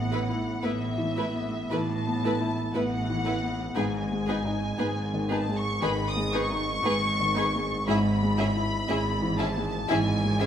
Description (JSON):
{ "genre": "cinematic, emotional film score for orchestra", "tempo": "58 BPM", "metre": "4/4", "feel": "rubato", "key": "unclear", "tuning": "A4 = 437 Hz", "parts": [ { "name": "dark studio violin section", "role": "melody", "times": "0.0-10.5 s", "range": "E5 to D#6", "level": "-31 LUFS", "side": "left 2 dB", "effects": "none" }, { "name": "felt-muted upright piano", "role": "accompaniment", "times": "0.0-10.5 s", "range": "G#2 to E4", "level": "-30 LUFS", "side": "left 2 dB", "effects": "none" }, { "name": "rich symphonic cello section", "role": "bass", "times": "0.0-10.5 s", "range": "G#2 to A2", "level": "-33 LUFS", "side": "right 2 dB", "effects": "none" }, { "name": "warm symphonic double bass section", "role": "bass", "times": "0.0-10.5 s", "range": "G#1 to A1", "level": "-33 LUFS", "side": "right 3 dB", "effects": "none" }, { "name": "rich symphonic violin section", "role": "second line", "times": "0.1-10.5 s", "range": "G#4 to E5", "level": "-33 LUFS", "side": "equal", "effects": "none" }, { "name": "warm studio viola section", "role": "accompaniment", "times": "0.1-10.5 s", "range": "A3 to E4", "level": "-35 LUFS", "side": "right 1 dB", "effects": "none" } ], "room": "wet recital hall reverb, RT60 1.5 s", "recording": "none", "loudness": "-25 LUFS", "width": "side -9 dB against mid", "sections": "0.0-10.5 A section", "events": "none", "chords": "0.0 Asus2; 3.8 G#m; 7.9 C#m7/G#" }